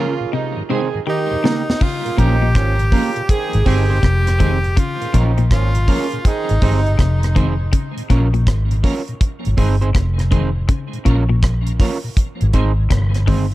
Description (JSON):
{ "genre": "roots reggae", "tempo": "81 BPM", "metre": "4/4", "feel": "swing 65% on 16ths", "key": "Bb dorian", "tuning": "A4 = 440 Hz", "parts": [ { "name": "warm horn section", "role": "second line", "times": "0.0-6.9 s", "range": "Bb2 to Ab4", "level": "-25 LUFS", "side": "right 7 dB", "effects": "tape echo" }, { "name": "electric guitar at the edge of break-up", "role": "accompaniment", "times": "0.0-13.5 s", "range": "Bb3 to Db5", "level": "-25 LUFS", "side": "right 5 dB", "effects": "tape echo" }, { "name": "tonewheel organ", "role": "accompaniment", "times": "0.0-13.5 s", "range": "Eb2 to Eb4", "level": "-28 LUFS", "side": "left 1 dB", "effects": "chorus vibrato, slow rotary speaker, tape echo" }, { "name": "semi-hollow electric guitar", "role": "arpeggios", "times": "0.0-13.5 s", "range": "Bb2 to Eb3", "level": "-25 LUFS", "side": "left 6 dB", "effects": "none" }, { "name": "edgy tenor saxophone", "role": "melody", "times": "1.1-7.4 s", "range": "Eb4 to Ab4", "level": "-24 LUFS", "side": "equal", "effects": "tape echo" }, { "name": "deep reggae drum kit", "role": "drums", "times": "1.5-13.5 s", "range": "crash cymbal, hi-hat, kick drum, rim click, snare drum", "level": "-17 LUFS", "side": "equal", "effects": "none" }, { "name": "vintage muted fingered electric bass", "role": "bass", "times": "2.2-13.5 s", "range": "F1 to Bb1", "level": "-16 LUFS", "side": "equal", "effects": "none" } ], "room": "small room reverb", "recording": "dark, warm production", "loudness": "-14 LUFS", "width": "side -16 dB against mid", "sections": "0.0-1.8 A section; 1.8-13.5 B section", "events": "break 0.0-1.8; drum fill 0.3-1.8", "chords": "0.3 Ab; 1.1 Eb; 1.8 Bbm; 3.3 Ab; 4.8 Bbm; 6.2 Ab; 7.7 Bbm; 9.2 Ab; 10.7 Bbm; 12.2 Ab", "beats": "0.33 1.07 | 1.81 2.55 3.29 4.03 | 4.77 5.51 6.25 6.99 | 7.73 8.47 9.21 9.95 | 10.69 11.43 12.17 12.91" }